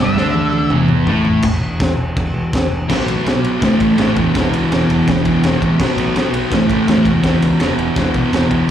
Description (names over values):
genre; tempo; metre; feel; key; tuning
garage rock duo or trio; 165 BPM; 4/4; straight; unclear; A4 = 440 Hz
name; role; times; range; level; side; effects
octave-fuzz lead guitar; melody; 0.0-0.7 s; E5; -21 LUFS; equal; distortion, slapback echo
fuzz guitar; riff; 0.0-8.7 s; E2 to D4; -14 LUFS; equal; distortion, slapback echo
growling picked electric bass; bass; 0.0-8.6 s; E1 to D#2; -21 LUFS; equal; overdrive
crunchy breakbeat drum kit; drums; 0.2-8.6 s; crash cymbal, kick drum, ride cymbal, snare drum, toms; -19 LUFS; equal; none
room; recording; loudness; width
light reverb; live gig heard through the venue's PA, club reverb; -13 LUFS; side -10 dB against mid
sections
0.0-1.4 A section; 1.4-2.9 B section; 2.9-8.7 C section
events
drum fill 0.0-1.4; lead electric guitar solo 0.0-1.4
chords
0.0 N.C.; 2.9 B5; 3.6 A5; 4.2 E5; 5.8 B5; 6.5 A5; 7.1 E5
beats
0.35 0.71 1.08 | 1.44 1.81 2.17 2.54 | 2.90 3.26 3.63 3.99 | 4.35 4.71 5.08 5.44 | 5.80 6.16 6.53 6.89 | 7.25 7.61 7.97 8.33